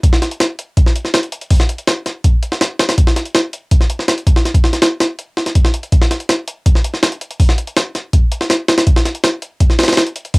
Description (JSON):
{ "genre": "drum and bass", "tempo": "163 BPM", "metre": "4/4", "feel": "straight", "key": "none", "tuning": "none", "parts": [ { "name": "jungle sampler-style drum kit", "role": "drums", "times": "0.0-10.4 s", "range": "hi-hat, kick drum, snare drum", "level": "-12 LUFS", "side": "equal", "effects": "cassette tape" } ], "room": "moderate booth ambience, RT60 0.2 s", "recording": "home recording on cassette", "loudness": "-13 LUFS", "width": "side -29 dB against mid", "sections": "0.0-10.4 A section", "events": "none", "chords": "none", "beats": "| 0.03 0.40 0.77 1.14 | 1.51 1.87 2.24 2.61 | 2.98 3.35 3.71 4.08 | 4.45 4.82 5.19 5.55 | 5.92 6.29 6.66 7.03 | 7.39 7.76 8.13 8.50 | 8.87 9.24 9.60 9.97 | 10.34" }